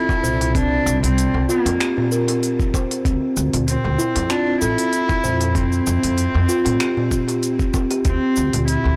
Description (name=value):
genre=organic downtempo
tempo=96 BPM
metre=4/4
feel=swing 54% on 16ths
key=D minor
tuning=A4 = 440 Hz
part: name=warm cello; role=melody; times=0.0-9.0 s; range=Bb3 to E4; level=-26 LUFS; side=equal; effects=digital delay
part: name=kalimba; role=arpeggios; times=0.0-8.2 s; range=C4 to C5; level=-24 LUFS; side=equal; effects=digital delay
part: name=impact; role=sound effects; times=0.0-0.6 s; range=none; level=barely audible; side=none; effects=none
part: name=electronic kick drum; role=drums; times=0.1-8.2 s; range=none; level=-23 LUFS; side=equal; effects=overdrive
part: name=organic electronic drum kit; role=drums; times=0.1-8.8 s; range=cabasa, finger snaps, hi-hat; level=-29 LUFS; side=equal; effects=soft clipping on snare
part: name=darbuka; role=percussion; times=0.1-9.0 s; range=none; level=-30 LUFS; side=equal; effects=none
part: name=upright bass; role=bass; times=0.2-8.9 s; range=A1 to A2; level=-23 LUFS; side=equal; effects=sidechain pumping
room=light reverb, small room reverb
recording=blown-out, overdriven recording, overdrive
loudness=-19 LUFS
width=mono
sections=0.0-9.0 A section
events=impact 0.0-0.6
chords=0.0 D7sus2 (rootless); 0.6 C7(no3); 3.1 Dm9; 5.6 Fsus2; 8.1 D7sus2